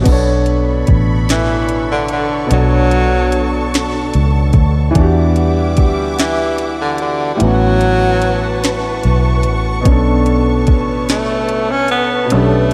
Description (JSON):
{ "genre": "slow six-eight R&B", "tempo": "49 BPM (dotted quarters)", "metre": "6/8", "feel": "straight", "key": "B minor", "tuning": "A4 = 440 Hz", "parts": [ { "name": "warm concert grand piano", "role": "accompaniment", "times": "0.0-12.7 s", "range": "A2 to C#5", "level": "-20 LUFS", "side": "equal", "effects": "none" }, { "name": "vintage muted fingered electric bass", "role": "bass", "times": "0.0-12.7 s", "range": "A1 to E2", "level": "-18 LUFS", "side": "equal", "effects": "none" }, { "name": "warm studio string section", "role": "sustained chords", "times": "0.1-12.7 s", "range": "G3 to D6", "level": "-25 LUFS", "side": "equal", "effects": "none" }, { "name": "smooth R&B drum kit", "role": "drums", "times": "0.1-12.7 s", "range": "crash cymbal, hi-hat, kick drum, snare drum", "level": "-18 LUFS", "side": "equal", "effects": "none" }, { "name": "breathy tenor saxophone", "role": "melody", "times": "1.3-12.7 s", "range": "D3 to C#4", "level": "-19 LUFS", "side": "equal", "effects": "analog delay" } ], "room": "moderate lush hall reverb, RT60 2.0 s", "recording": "dreamy mix soaked in reverb", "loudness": "-14 LUFS", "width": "mono", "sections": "0.1-12.7 A section", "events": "kick muted 7.4-9.9", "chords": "0.1 Bm9; 5.0 Em9; 7.4 A69; 9.9 Bm9", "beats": "| 0.06 1.28 | 2.50 3.73 | 4.95 6.18 | 7.40 8.63 | 9.85 11.08 | 12.30" }